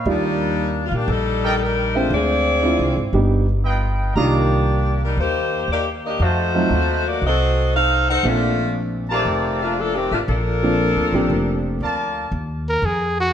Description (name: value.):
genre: jazz, big band swing.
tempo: 118 BPM.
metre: 4/4.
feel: swing 68% on 8ths.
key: Bb major.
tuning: A4 = 437 Hz.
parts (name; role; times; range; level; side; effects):
warm trumpet section; stabs; 0.0-12.3 s; Eb4 to Bb5; -26 LUFS; right 1 dB; none.
upright bass; bass; 0.0-13.3 s; F1 to Bb2; -22 LUFS; equal; none.
dark saxophone section; melody; 0.1-11.8 s; Eb3 to Gb5; -20 LUFS; left 2 dB; none.
warm concert grand piano; accompaniment; 0.1-11.8 s; Bb2 to G5; -22 LUFS; right 2 dB; none.
warm trumpet; melody; 12.7-13.3 s; Gb4 to Bb4; -18 LUFS; equal; none.
room: moderate recital hall reverb, RT60 1.7 s.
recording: none.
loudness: -17 LUFS.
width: side -9 dB against mid.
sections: 0.0-12.3 A section; 12.3-13.3 B section.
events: trumpet solo 12.3-13.3.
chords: 0.1 Ebmaj7; 2.1 Dm7b5; 3.1 G7b13; 4.2 Cm11; 6.2 F7b9; 8.2 Bbmaj7; 12.3 N.C..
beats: | 0.06 0.57 1.08 1.60 | 2.11 2.62 3.13 3.64 | 4.15 4.67 5.18 5.69 | 6.20 6.71 7.22 7.73 | 8.24 8.75 9.26 9.77 | 10.28 10.79 11.30 11.81 | 12.32 12.83.